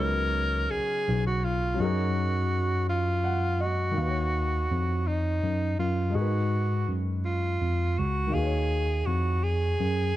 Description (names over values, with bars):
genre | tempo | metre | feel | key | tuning
slow six-eight R&B | 55 BPM (dotted quarters) | 6/8 | straight | unclear | A4 = 439 Hz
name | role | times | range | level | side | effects
breathy tenor saxophone | melody | 0.0-10.2 s | D#4 to A#4 | -29 LUFS | right 1 dB | none
warm grand piano | accompaniment | 0.0-10.2 s | C#3 to F#5 | -35 LUFS | left 3 dB | none
tine electric piano | bass | 0.0-10.1 s | B1 to G#2 | -27 LUFS | equal | medium stereo tremolo
room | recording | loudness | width
small room reverb | none | -25 LUFS | side -14 dB against mid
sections
0.0-4.0 A section; 4.0-10.2 B section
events
grand piano fill 2.9-4.0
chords
0.0 C#7sus4; 1.8 F#6; 4.0 D#m9; 6.1 G#m9; 8.3 D#m9